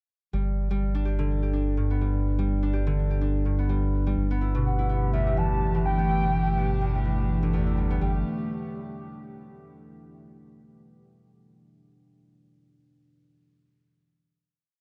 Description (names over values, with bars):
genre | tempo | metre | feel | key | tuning
IDM | 125 BPM | 4/4 | swing 56% on 16ths | G major | A4 = 440 Hz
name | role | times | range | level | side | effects
concert harp | arpeggios | 0.3-8.2 s | E2 to G4 | -31 LUFS | equal | digital delay
round analog bass | bass | 0.3-8.2 s | G1 | -28 LUFS | equal | none
warbly tape-like pad | sustained chords | 4.6-8.2 s | A3 to G4 | -37 LUFS | equal | chorus, built-in reverb, phaser
warbly nostalgic lead | melody | 4.7-8.2 s | E5 to A5 | -34 LUFS | equal | lush chorus, digital delay
room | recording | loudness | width
light reverb, digital ambience | nothing above 10.8 kHz | -26 LUFS | mono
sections
0.3-8.0 groove; 8.0-9.9 final chord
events
none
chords
0.3 G; 4.2 Em11/G; 8.0 Gmaj9